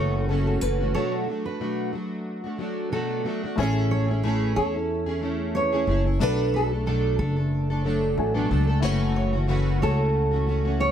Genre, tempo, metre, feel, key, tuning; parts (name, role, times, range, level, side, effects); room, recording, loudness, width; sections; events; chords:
acoustic pop; 91 BPM; 4/4; swing 55% on 16ths; A major; A4 = 439 Hz
nylon-string guitar; melody; 0.0-10.9 s; A4 to C#5; -27 LUFS; right 1 dB
fingerpicked plugged-in steel-string acoustic guitar; accompaniment; 0.0-10.9 s; F#2 to A4; -26 LUFS; equal; double-tracked left and right
fingerpicked steel-string acoustic guitar; arpeggios; 0.0-10.9 s; A4 to C#5; -33 LUFS; right 5 dB
upright bass; bass; 0.0-10.9 s; F#1 to E2; -25 LUFS; equal
dark upright piano; accompaniment; 3.6-10.9 s; A3 to G#5; -35 LUFS; left 6 dB
light reverb; -22 LUFS; side -9 dB against mid
0.0-3.6 A section; 3.6-10.9 B section
break 0.9-3.6
0.0 F#m7; 0.9 Bm7; 3.6 Amaj7; 6.2 Bm7; 8.8 F#m7